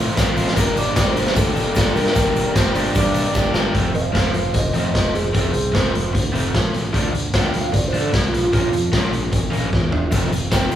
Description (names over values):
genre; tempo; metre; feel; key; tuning
indie rock; 151 BPM; 4/4; straight; F major; A4 = 440 Hz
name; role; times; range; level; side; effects
electric guitar through a small old amp; melody; 0.0-10.8 s; F4 to G5; -24 LUFS; right 1 dB; none
crunchy overdriven guitar; riff; 0.0-10.8 s; F3 to G4; -24 LUFS; equal; none
fuzz fingered electric bass; bass; 0.0-10.8 s; E1 to D3; -25 LUFS; equal; overdrive
raw garage drum kit; drums; 0.1-10.8 s; hi-hat, kick drum, snare drum, toms; -19 LUFS; equal; none
tube shaker; percussion; 0.2-3.6, 10.1-10.8 s; none; -39 LUFS; left 6 dB; none
room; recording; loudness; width
moderate large studio reverb, RT60 1.3 s; band playing live in one room; -16 LUFS; side -11 dB against mid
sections
0.0-3.8 A section; 3.8-10.8 B section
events
drum fill 3.4-3.8, 9.7-10.1; clean electric guitar solo 3.8-10.8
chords
0.0 F; 0.6 Gm; 3.8 F; 6.9 Dm7; 8.3 Bbm; 10.1 F